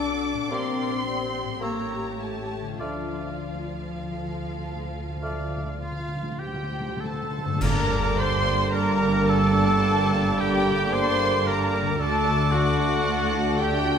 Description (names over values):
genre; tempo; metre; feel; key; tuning
classical, slow romantic movement for symphony orchestra; 48-57 BPM; 4/4; rubato; D minor, G minor from 7.6 s; A4 = 435 Hz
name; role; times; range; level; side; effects
muted symphonic violin section; melody; 0.0-14.0 s; F5 to D6; -31 LUFS; left 1 dB; none
muted symphonic violin section; second line; 0.0-14.0 s; F4 to D5; -34 LUFS; equal; none
muted symphonic viola section; accompaniment; 0.0-14.0 s; Bb3 to Bb4; -34 LUFS; equal; none
warm French horn section; sustained chords; 0.0-14.0 s; F3 to D4; -33 LUFS; left 3 dB; none
concert harp; arpeggios; 0.0-14.0 s; G2 to A4; -35 LUFS; left 10 dB; none
muted studio cello section; bass; 0.0-14.0 s; D2 to D4; -30 LUFS; right 3 dB; none
muted symphonic double bass section; bass; 0.0-14.0 s; G1 to D2; -31 LUFS; right 3 dB; none
silver concert flute; second line; 0.5-13.8 s; D6 to F6; -33 LUFS; left 2 dB; none
warm clarinet; second line; 0.5-13.9 s; F4 to C5; -32 LUFS; left 1 dB; none
warm oboe; second line; 0.5-13.9 s; F4 to D5; -32 LUFS; right 1 dB; none
mellow bassoon; accompaniment; 0.5-13.8 s; D3 to Bb3; -34 LUFS; equal; none
timpani; percussion; 2.8-7.6 s; D3; -34 LUFS; left 1 dB; none
warm trombone section; sustained chords; 7.6-14.0 s; D3 to A3; -33 LUFS; right 4 dB; none
clash cymbals and concert bass drum; percussion; 7.6-9.8 s; none; -31 LUFS; equal; none
room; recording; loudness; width
moderate scoring stage reverb, RT60 1.6 s; none; -22 LUFS; side -7 dB against mid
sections
0.0-7.6 A section; 7.6-14.0 B section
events
timpani fill 2.8-7.6; band accent 7.6-8.7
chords
0.0 D7/C; 0.5 Gm/Bb; 1.6 A7b9; 2.8 Dm; 7.6 Gm; 12.0 D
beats
0.52 1.61 | 2.79 4.02 5.22 6.41 | 7.61 8.72 9.82 10.92 | 11.99 13.06